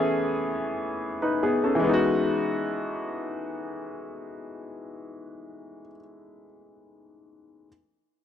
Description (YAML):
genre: R&B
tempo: free time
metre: none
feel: none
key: E major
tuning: A4 = 440 Hz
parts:
  - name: clear grand piano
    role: accompaniment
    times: 0.0-7.7 s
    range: E3 to B4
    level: -26 LUFS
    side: left 1 dB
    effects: none
room: light reverb, digital ambience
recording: dry, gritty hardware recording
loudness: -24 LUFS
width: side -9 dB against mid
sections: 0.0-1.8 A section; 1.8-5.2 B section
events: none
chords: 0.0 Amaj7; 1.8 Emaj9